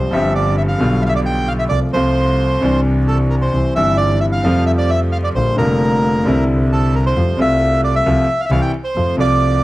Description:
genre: tango.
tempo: 132 BPM.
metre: 4/4.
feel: rubato.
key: F major.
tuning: A4 = 440 Hz.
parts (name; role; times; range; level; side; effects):
bandoneon; melody; 0.0-9.6 s; A4 to G5; -18 LUFS; right 1 dB; none.
clear concert grand piano; accompaniment; 0.0-9.6 s; F1 to G4; -18 LUFS; left 1 dB; none.
rich double bass; bass; 0.0-9.6 s; F1 to F2; -18 LUFS; equal; none.
room: little or no reverb.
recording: close, detailed microphones, vinyl crackle.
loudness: -13 LUFS.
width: side -17 dB against mid.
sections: 0.0-9.6 A section.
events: none.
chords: 0.0 Csus4; 0.8 G7/B; 1.7 F/C; 2.6 Cadd9; 3.5 C; 4.4 Fadd9; 5.4 Bb6; 6.3 Cadd9; 7.2 Fadd9; 8.1 F/C; 8.5 C; 9.0 F.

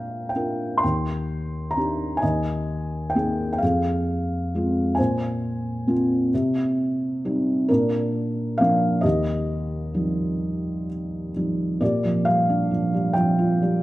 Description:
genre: classical, lyrical solo piano.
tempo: 44 BPM (dotted quarters).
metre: 6/8.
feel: rubato.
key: unclear.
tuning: A4 = 440 Hz.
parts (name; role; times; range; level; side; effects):
felt-muted upright piano; solo; 0.0-13.8 s; Eb2 to C6; -21 LUFS; equal; none.
room: moderate recital hall reverb, RT60 1.6 s.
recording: dark, warm production.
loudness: -21 LUFS.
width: side -17 dB against mid.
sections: 0.0-11.8 A section; 11.8-13.8 B section.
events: none.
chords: 0.0 Bb; 0.8 Ebmaj7; 2.2 Absus2/Eb; 3.6 Fm; 5.0 Bbsus2; 6.3 Cm; 7.7 Bb; 9.0 Ebadd9; 11.8 Bb6.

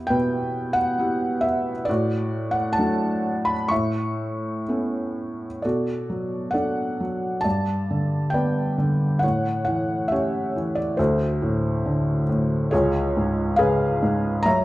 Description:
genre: classical, lyrical solo piano.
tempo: 60-71 BPM.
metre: 4/4.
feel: rubato.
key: B minor from 5.6 s.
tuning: A4 = 440 Hz.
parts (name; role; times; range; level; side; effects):
felt-muted upright piano; solo; 0.0-14.6 s; C#2 to C#6; -21 LUFS; equal; none.
room: moderate recital hall reverb, RT60 1.4 s.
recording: dark, warm production.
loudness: -21 LUFS.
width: side -17 dB against mid.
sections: 0.0-5.6 A section; 5.6-14.6 B section.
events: none.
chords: 0.0 Em; 1.9 D/A; 3.7 Aadd9; 5.6 Bm7; 7.5 G; 9.2 A7; 11.0 D7; 12.7 C#7.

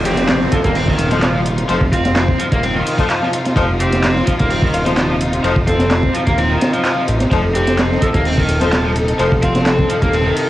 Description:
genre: breakbeat, breaks.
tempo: 128 BPM.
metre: 4/4.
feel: straight.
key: unclear.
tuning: A4 = 440 Hz.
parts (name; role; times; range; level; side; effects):
clear studio string section; sustained chords; 0.0-10.5 s; C3 to A4; -22 LUFS; equal; sidechain pumping, cassette tape.
fat analog bass; bass; 0.0-10.3 s; Eb1 to A1; -19 LUFS; equal; none.
downlifter; sound effects; 0.0-3.6 s; none; -25 LUFS; right 1 dB; none.
growling alto saxophone; melody; 0.1-9.6 s; F4 to A4; -24 LUFS; equal; telephone sound, vintage 12-bit sampler grit, cassette tape, analog delay.
crunchy overdriven guitar; riff; 0.1-10.5 s; Eb3 to C4; -20 LUFS; equal; tube saturation, cassette tape, analog delay.
crunchy breakbeat drum kit; drums; 0.1-10.5 s; hi-hat, kick drum, ride cymbal, snare drum; -18 LUFS; equal; cassette tape.
punchy analog drum machine; drums; 0.1-10.5 s; handclaps, hi-hat; -25 LUFS; equal; cassette tape.
warm horn section; stabs; 1.1-9.3 s; A3 to C5; -24 LUFS; left 5 dB; none.
room: light reverb, small room reverb.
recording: home recording on cassette.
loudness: -13 LUFS.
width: side -14 dB against mid.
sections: 0.0-10.5 A section.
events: none.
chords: 0.0 F7.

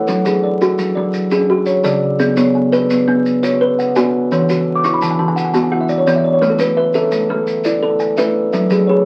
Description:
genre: southern african traditional, mbira-style interlocking cycle.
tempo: 114 BPM (dotted quarters).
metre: 12/8.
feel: straight.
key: A major.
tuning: A4 = 440 Hz.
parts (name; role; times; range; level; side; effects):
kalimba; arpeggios; 0.0-9.1 s; C#3 to G#5; -17 LUFS; equal; none.
kalimba; arpeggios; 0.0-9.1 s; E3 to D6; -20 LUFS; equal; none.
maracas; percussion; 0.1-8.9 s; none; -33 LUFS; equal; none.
room: wet club reverb, RT60 0.6 s.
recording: very old 78 rpm record, vinyl crackle.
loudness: -15 LUFS.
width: mono.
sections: 0.0-6.4 A section; 6.4-9.1 B section.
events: kalimba fill 4.6-6.4.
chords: 0.1 F#m; 2.2 Bm; 4.3 E; 6.4 A5; 8.5 F#5.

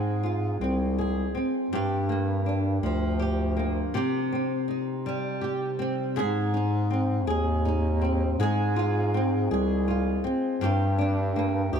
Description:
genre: six-eight pop ballad.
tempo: 54 BPM (dotted quarters).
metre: 6/8.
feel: straight.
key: F dorian.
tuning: A4 = 440 Hz.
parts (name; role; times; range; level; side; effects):
flamenco guitar; accompaniment; 0.0-11.8 s; G2 to Ab4; -27 LUFS; equal; double-tracked left and right.
mellow bass clarinet; bass; 0.0-11.8 s; C2 to Ab2; -26 LUFS; equal; none.
room: moderate plate reverb, RT60 3.0 s.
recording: dreamy mix soaked in reverb.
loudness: -24 LUFS.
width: side -7 dB against mid.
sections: 0.0-6.2 A section; 6.2-11.8 B section.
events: break 3.9-6.2.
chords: 0.0 Fm/Ab; 1.7 Gm7; 3.9 Cm; 6.2 Ab; 8.4 Fm/Ab; 10.6 Gm.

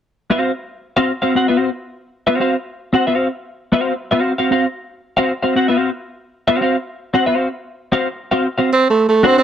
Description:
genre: funk.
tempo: 114 BPM.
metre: 4/4.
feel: straight.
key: unclear.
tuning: A4 = 439 Hz.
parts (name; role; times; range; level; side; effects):
clean electric guitar; accompaniment; 0.3-9.4 s; C4 to F#5; -15 LUFS; left 1 dB; ensemble chorus.
breathy tenor saxophone; melody; 8.7-9.4 s; A3 to C4; -11 LUFS; right 3 dB; none.
room: moderate spring reverb, RT60 1.3 s.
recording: none.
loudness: -15 LUFS.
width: side -9 dB against mid.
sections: 0.3-8.7 A section.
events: none.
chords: 0.3 Csus4; 8.7 D7.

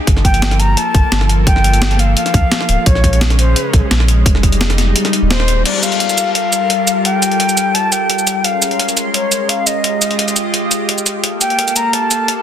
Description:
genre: liquid drum and bass.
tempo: 172 BPM.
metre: 4/4.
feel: straight.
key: unclear.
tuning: A4 = 438 Hz.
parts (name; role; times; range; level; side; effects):
lush unison pad; sustained chords; 0.0-12.4 s; Db3 to C6; -19 LUFS; left 1 dB; chorus.
warm sub bass; bass; 0.1-5.6 s; D1 to D2; -14 LUFS; equal; tube saturation.
breakbeat sampler-style drum kit; drums; 0.1-12.4 s; crash cymbal, hi-hat, shaker, snare drum; -17 LUFS; equal; none.
electronic kick drum; drums; 0.1-4.5 s; none; -12 LUFS; equal; overdrive.
mellow concert flute; melody; 0.3-12.4 s; C5 to Bb5; -18 LUFS; left 2 dB; dub echo.
room: light reverb, digital ambience.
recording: dense, heavily limited modern master.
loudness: -11 LUFS.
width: side -10 dB against mid.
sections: 0.0-5.7 A section; 5.7-12.4 B section.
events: kick drops out 5.0-5.7; band accent 5.3.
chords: 0.1 Gm9; 2.9 Bbm9; 4.3 Fm9; 5.7 Gm9; 8.4 Bbm9; 9.8 Fm9; 11.2 Gm9.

